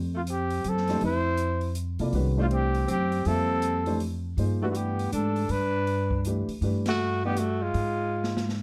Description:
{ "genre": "modal jazz", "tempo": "160 BPM", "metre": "3/4", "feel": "swing 63% on 8ths", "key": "unclear", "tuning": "A4 = 440 Hz", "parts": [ { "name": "upright bass", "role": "bass", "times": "0.0-8.6 s", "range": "C2 to C3", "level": "-30 LUFS", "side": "equal", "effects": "none" }, { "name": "breathy alto saxophone", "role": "second line", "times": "0.1-8.5 s", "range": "Ab3 to E4", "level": "-35 LUFS", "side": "equal", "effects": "none" }, { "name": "breathy trumpet", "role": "melody", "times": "0.2-8.5 s", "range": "F4 to C5", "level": "-32 LUFS", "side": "equal", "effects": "none" }, { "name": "open jazz drum kit", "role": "drums", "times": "0.3-8.6 s", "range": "hi-hat, kick drum, ride cymbal, snare drum", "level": "-40 LUFS", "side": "equal", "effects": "none" }, { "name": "warm upright piano", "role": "accompaniment", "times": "0.9-7.4 s", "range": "Eb3 to E5", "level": "-34 LUFS", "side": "equal", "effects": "none" } ], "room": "light reverb", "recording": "dark, warm production", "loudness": "-27 LUFS", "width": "mono", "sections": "0.0-8.6 A section", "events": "band accent 6.8; drum fill 8.1-8.5", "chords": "0.0 Fmaj9; 4.4 Gmaj9; 7.7 N.C.", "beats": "0.27 0.64 | 1.02 1.39 1.76 | 2.14 2.51 2.88 | 3.26 3.63 4.01 | 4.38 4.75 5.13 | 5.50 5.88 6.25 | 6.62 7.00 7.37 | 7.75 8.12 8.50" }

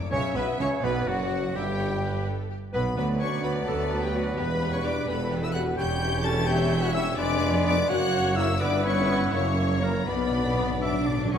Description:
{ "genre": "classical, dramatic, fast romantic movement for symphony orchestra", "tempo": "84 BPM (dotted quarters)", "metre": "6/8", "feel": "rubato", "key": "B minor", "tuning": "A4 = 440 Hz", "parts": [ { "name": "warm symphonic violin section", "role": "melody", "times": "0.0-11.4 s", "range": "F#5 to A6", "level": "-34 LUFS", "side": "left 4 dB", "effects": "none" }, { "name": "clear clarinet", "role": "second line", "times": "0.0-10.8 s", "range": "F#4 to A5", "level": "-34 LUFS", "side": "left 2 dB", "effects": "none" }, { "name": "mellow hollow large flute ensemble", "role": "second line", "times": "0.0-10.8 s", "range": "F#4 to A5", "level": "-36 LUFS", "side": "left 2 dB", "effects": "none" }, { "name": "clear symphonic viola section", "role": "accompaniment", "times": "0.0-11.2 s", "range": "G4 to E5", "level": "-36 LUFS", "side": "left 1 dB", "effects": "none" }, { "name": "timpani", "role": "percussion", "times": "0.0-0.8, 10.1-11.4 s", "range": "B2", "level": "-33 LUFS", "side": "equal", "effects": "none" }, { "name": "clear oboe", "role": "second line", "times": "0.1-11.4 s", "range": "F#4 to E5", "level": "-36 LUFS", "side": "right 1 dB", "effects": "none" }, { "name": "rich symphonic violin section", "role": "second line", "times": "0.1-11.3 s", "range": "A#3 to C#5", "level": "-36 LUFS", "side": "left 3 dB", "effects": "none" }, { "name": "mellow bassoon", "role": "accompaniment", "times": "0.1-11.3 s", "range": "F#3 to C#4", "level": "-34 LUFS", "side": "equal", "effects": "none" }, { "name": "clear trombone section", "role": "sustained chords", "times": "0.1-11.4 s", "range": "F#2 to C#4", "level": "-38 LUFS", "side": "right 4 dB", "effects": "none" }, { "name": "mellow French horn section", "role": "sustained chords", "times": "0.1-11.4 s", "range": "F#3 to A4", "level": "-32 LUFS", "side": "left 4 dB", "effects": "none" }, { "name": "rich symphonic cello section", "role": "bass", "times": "0.1-11.4 s", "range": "D2 to D4", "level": "-31 LUFS", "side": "right 2 dB", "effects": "none" }, { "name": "rich symphonic double bass section", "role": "bass", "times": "0.1-11.3 s", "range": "E1 to D2", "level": "-32 LUFS", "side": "right 2 dB", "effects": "none" }, { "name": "warm tuba", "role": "bass", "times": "0.1-11.3 s", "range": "E1 to D2", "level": "-34 LUFS", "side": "right 3 dB", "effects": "none" } ], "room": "wet scoring stage reverb, RT60 1.8 s", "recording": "none", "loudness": "-23 LUFS", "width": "side -8 dB against mid", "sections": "0.1-11.4 A section", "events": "timpani fill 10.1-11.4", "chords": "0.1 Bm; 1.6 Gadd9; 3.0 Bm/D; 4.4 Em; 5.8 C#dim/E; 7.2 Fdim7; 7.9 F#; 8.6 Em/G; 9.3 F#7; 10.1 Bm", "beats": "| 0.12 0.83 | 1.55 2.27 | 2.97 3.68 | 4.38 5.08 | 5.78 6.48 | 7.18 7.89 | 8.61 9.33 | 10.07 10.82" }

